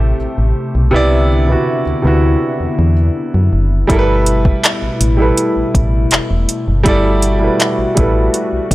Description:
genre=contemporary R&B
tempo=81 BPM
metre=4/4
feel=straight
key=G major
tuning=A4 = 440 Hz
part: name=warm grand piano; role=accompaniment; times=0.0-8.7 s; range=C3 to D5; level=-16 LUFS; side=right 2 dB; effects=none
part: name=warm analog pad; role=sustained chords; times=0.0-8.7 s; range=B2 to G4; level=-21 LUFS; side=left 3 dB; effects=lush chorus, sidechain pumping
part: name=solid FM bass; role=bass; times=0.0-8.7 s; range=E1 to F#2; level=-14 LUFS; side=equal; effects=none
part: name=smooth R&B drum kit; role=drums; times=3.9-8.7 s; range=handclaps, hi-hat, kick drum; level=-14 LUFS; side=equal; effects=overdrive
room=digital ambience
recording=none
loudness=-11 LUFS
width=side -17 dB against mid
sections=0.0-8.7 A section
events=none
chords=0.0 Am7; 0.9 Cmaj9; 3.9 G69

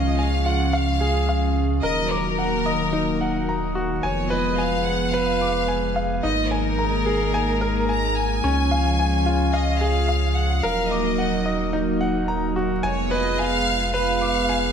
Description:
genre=electronica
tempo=109 BPM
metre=4/4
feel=straight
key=Eb minor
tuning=A4 = 440 Hz
part: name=clear chamber violin section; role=melody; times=0.0-14.7 s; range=Bb4 to Bb5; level=-26 LUFS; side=left 1 dB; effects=none
part: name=lush unison pad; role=sustained chords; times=0.0-14.7 s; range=Db3 to F4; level=-25 LUFS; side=equal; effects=chorus
part: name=bright grand piano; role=riff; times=0.0-14.7 s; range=Db4 to D6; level=-25 LUFS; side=right 1 dB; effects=low-pass filter
part: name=warm sub bass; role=bass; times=0.0-14.7 s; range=Eb1 to Db2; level=-25 LUFS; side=equal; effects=none
room=moderate recital hall reverb, RT60 1.5 s, digital ambience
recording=none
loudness=-19 LUFS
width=side -7 dB against mid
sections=0.0-14.7 A section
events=none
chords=0.0 Db; 1.8 Ebm; 4.0 Fdim; 6.2 Absus2; 8.4 Db; 10.6 Ebm; 12.8 Fdim

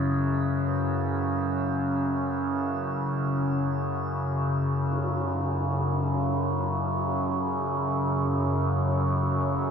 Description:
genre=dark ambient drone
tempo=free time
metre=none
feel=none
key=F# minor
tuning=A4 = 440 Hz
part: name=dark detuned synth bell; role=arpeggios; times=0.0-5.0 s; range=B4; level=-51 LUFS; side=right 2 dB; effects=none
part: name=overtone-sweeping drone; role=drone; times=0.0-9.7 s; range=F#2 to C#3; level=-24 LUFS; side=equal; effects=chorus, built-in reverb
part: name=bronze singing bowl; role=texture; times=0.0-9.7 s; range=E4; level=-45 LUFS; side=left 1 dB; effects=none
part: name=dark analog pad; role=sustained chords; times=6.1-9.7 s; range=F#3 to C#5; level=-41 LUFS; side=right 1 dB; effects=none
part: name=tam-tam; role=percussion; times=4.9-5.2 s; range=none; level=-40 LUFS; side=left 1 dB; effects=none
room=wet huge ambient reverb, RT60 8.4 s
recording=none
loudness=-24 LUFS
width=side -7 dB against mid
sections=0.0-4.9 A section; 4.9-9.7 B section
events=none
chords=0.0 F#7sus4; 4.9 F#m

